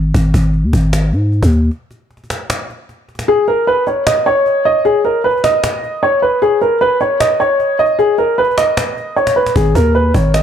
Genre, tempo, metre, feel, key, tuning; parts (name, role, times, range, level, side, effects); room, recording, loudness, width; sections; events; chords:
hip hop, trap; 153 BPM; 4/4; half-time; G# minor; A4 = 440 Hz
growling 808-style bass; bass; 0.0-1.7, 9.6-10.4 s; G#1 to G#2; -12 LUFS; equal
cajon; drums; 0.1-10.4 s; -20 LUFS; equal
dark grand piano; melody; 3.3-10.4 s; G#4 to D#5; -12 LUFS; equal; digital delay
light reverb, studio reverb; dark, warm production; -11 LUFS; side -9 dB against mid
0.0-10.4 A section
break 0.0-3.3; kick muted 3.3-9.6
0.1 G#5; 3.3 N.C.; 9.6 G#5